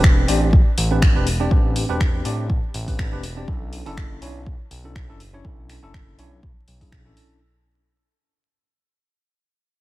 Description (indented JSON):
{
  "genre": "deep house",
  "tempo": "122 BPM",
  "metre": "4/4",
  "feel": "swing 55% on 16ths",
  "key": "unclear",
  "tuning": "A4 = 442 Hz",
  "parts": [
    { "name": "tine electric piano", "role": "stabs", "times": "0.0-7.4 s", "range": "C4 to D5", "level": "-26 LUFS", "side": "right 1 dB", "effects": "medium stereo tremolo, sidechain pumping, dub echo" },
    { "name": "smooth synth bass", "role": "bass", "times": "0.0-7.1 s", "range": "E1 to B1", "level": "-25 LUFS", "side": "equal", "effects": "sidechain pumping" },
    { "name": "deep house drum kit", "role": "drums", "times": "0.0-7.3 s", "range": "finger snaps, hi-hat", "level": "-28 LUFS", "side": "equal", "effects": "none" },
    { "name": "electronic kick drum", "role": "drums", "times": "0.0-7.0 s", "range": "none", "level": "-18 LUFS", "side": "equal", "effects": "none" }
  ],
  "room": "digital ambience",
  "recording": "vinyl crackle, faint mains hum",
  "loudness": "-17 LUFS",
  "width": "side -18 dB against mid",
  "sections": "0.0-7.4 A section",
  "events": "fade-out 0.0-7.4",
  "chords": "0.0 Am11; 3.5 Bm11"
}